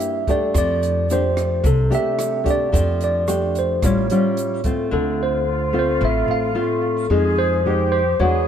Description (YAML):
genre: bossa nova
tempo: 110 BPM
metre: 4/4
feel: straight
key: F major, D minor from 4.9 s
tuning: A4 = 438 Hz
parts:
  - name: tine electric piano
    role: melody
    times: 0.0-8.5 s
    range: Ab4 to F5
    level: -22 LUFS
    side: right 1 dB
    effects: auto-pan
  - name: nylon-string guitar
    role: accompaniment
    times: 0.0-8.5 s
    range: G2 to G4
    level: -22 LUFS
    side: left 2 dB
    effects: none
  - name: compact cocktail drum kit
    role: drums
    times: 0.0-4.8 s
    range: hi-hat, kick drum, rim click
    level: -24 LUFS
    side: right 1 dB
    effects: none
  - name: egg shaker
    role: percussion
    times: 0.0-4.9 s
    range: none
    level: -36 LUFS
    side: right 5 dB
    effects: none
  - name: upright bass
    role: bass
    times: 0.5-8.5 s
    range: A1 to F2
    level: -22 LUFS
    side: equal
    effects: none
  - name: breathy large flute ensemble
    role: second line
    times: 4.9-8.5 s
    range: F4 to Ab4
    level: -27 LUFS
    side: equal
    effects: none
room: moderate plate reverb, RT60 2.1 s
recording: heard from further back in the room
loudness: -17 LUFS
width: side -8 dB against mid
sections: 0.0-4.9 A section; 4.9-8.5 B section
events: none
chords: 0.0 C7 (rootless); 0.5 F69; 3.8 A7alt; 4.9 Dm7; 7.1 Fm9